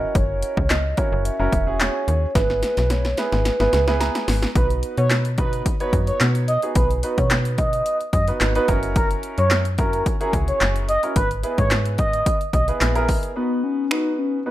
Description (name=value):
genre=dance-pop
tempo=109 BPM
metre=4/4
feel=straight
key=B major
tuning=A4 = 439 Hz
part: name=hollow clarinet-like synth lead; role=melody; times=0.0-4.3, 13.4-14.5 s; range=B3 to E5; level=-24 LUFS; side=equal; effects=chorus, digital delay
part: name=clear grand piano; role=accompaniment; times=0.0-14.5 s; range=B3 to A#5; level=-27 LUFS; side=right 2 dB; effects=sidechain pumping
part: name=slap-like FM bass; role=bass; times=0.0-13.2 s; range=E1 to B2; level=-22 LUFS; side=equal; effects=sidechain pumping
part: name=punchy analog drum machine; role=drums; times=0.2-14.0 s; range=finger snaps, handclaps, hi-hat, kick drum, snare drum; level=-22 LUFS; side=equal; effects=overdrive
part: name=expressive synth lead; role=melody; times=4.6-12.7 s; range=A#4 to D#5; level=-24 LUFS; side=right 1 dB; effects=chorus, sidechain pumping
room=light reverb, digital ambience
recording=rough home demo mix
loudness=-18 LUFS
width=side -14 dB against mid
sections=0.0-4.6 A section; 4.6-13.4 B section; 13.4-14.5 C section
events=drum fill 2.4-4.6; grand piano fill 3.7-4.6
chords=0.0 F#7; 2.4 E/G#; 4.6 B; 8.7 F#7; 11.2 E/G#; 13.4 B